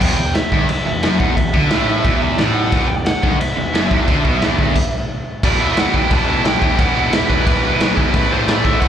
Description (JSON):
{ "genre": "punk rock", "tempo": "177 BPM", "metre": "4/4", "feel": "straight", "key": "E minor", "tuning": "A4 = 440 Hz", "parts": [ { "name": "dark smooth lead guitar", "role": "melody", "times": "0.0-8.9 s", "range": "B4 to A5", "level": "-23 LUFS", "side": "right 2 dB", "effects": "overdrive, slapback echo, digital delay" }, { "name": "cranked stack guitar", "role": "riff", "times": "0.0-8.9 s", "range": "E2 to E4", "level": "-21 LUFS", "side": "right 11 dB", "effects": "overdrive, slapback echo" }, { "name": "distorted electric guitar", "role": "riff", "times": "0.0-8.9 s", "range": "E2 to A3", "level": "-22 LUFS", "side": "left 12 dB", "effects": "overdrive, slapback echo" }, { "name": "distorted electric guitar", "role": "riff", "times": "0.0-4.8 s", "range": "E2 to D3", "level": "-25 LUFS", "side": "right 1 dB", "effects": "overdrive, slapback echo" }, { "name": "fuzz picked electric bass", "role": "bass", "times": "0.0-8.9 s", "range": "E1 to D2", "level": "-23 LUFS", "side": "equal", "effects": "overdrive" }, { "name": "raw garage drum kit", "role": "drums", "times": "0.0-8.9 s", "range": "crash cymbal, kick drum, snare drum", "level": "-17 LUFS", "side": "equal", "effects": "none" } ], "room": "small room ambience", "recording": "live gig heard through the venue's PA, club reverb", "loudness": "-14 LUFS", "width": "side -9 dB against mid", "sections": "0.0-5.4 A section; 5.4-8.9 B section", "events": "stop 4.8-5.4", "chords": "0.0 Em; 8.1 Am" }